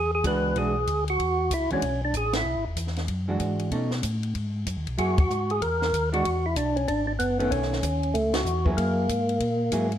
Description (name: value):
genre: soul jazz organ trio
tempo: 190 BPM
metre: 4/4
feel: swing 63% on 8ths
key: unclear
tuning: A4 = 441 Hz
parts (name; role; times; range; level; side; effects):
- percussive tonewheel organ; melody; 0.0-2.6, 5.0-9.9 s; A3 to B4; -25 LUFS; equal; slow rotary speaker, overdrive
- mellow tonewheel organ; bass; 0.0-10.0 s; E1 to B2; -29 LUFS; equal; chorus vibrato, slow rotary speaker
- vintage hollow-body jazz guitar; accompaniment; 0.2-9.9 s; D#3 to G#4; -30 LUFS; right 2 dB; none
- compact cocktail drum kit; drums; 0.2-10.0 s; hi-hat, kick drum, ride cymbal, snare drum; -29 LUFS; equal; none
room: moderate large studio reverb, RT60 1.2 s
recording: none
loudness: -23 LUFS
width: side -10 dB against mid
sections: 0.0-10.0 A section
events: band accent 2.3, 5.1, 8.3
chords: 0.0 E9; 3.7 B9; 5.0 F#9; 6.2 Eadd9; 7.5 B9; 8.8 F#9